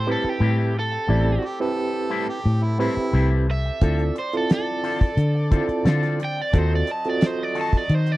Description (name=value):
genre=straight-eighth soul blues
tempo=88 BPM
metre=4/4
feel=straight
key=unclear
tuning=A4 = 440 Hz
part: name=crunchy overdriven guitar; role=melody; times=0.0-8.2 s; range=G4 to A5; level=-27 LUFS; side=right 2 dB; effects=none
part: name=bright horn section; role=sustained chords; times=0.0-8.2 s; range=F#3 to D#5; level=-34 LUFS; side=left 2 dB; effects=none
part: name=vintage muted fingered electric bass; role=bass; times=0.0-8.2 s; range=A1 to D#3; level=-21 LUFS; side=left 1 dB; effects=none
part: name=overdriven reed electric piano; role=accompaniment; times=0.1-7.8 s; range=C4 to D5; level=-25 LUFS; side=right 2 dB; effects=fast tremolo
part: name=electric guitar with an envelope filter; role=stabs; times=0.1-8.1 s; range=A2 to A4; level=-32 LUFS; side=left 6 dB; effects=none
part: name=bright harmonica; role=second line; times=1.4-3.3 s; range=E4 to A4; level=-30 LUFS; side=right 2 dB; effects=overdrive
part: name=damped 70s drum kit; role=drums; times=3.8-8.2 s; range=hi-hat, kick drum, snare drum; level=-19 LUFS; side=equal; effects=none
room=little or no reverb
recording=dry, close 1970s-style studio recording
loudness=-19 LUFS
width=side -17 dB against mid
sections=0.0-8.2 A section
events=none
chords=0.0 Am7; 3.8 Dm7; 6.5 D#dim7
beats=0.42 | 1.10 1.78 2.46 3.14 | 3.82 4.50 5.18 5.86 | 6.54 7.22 7.90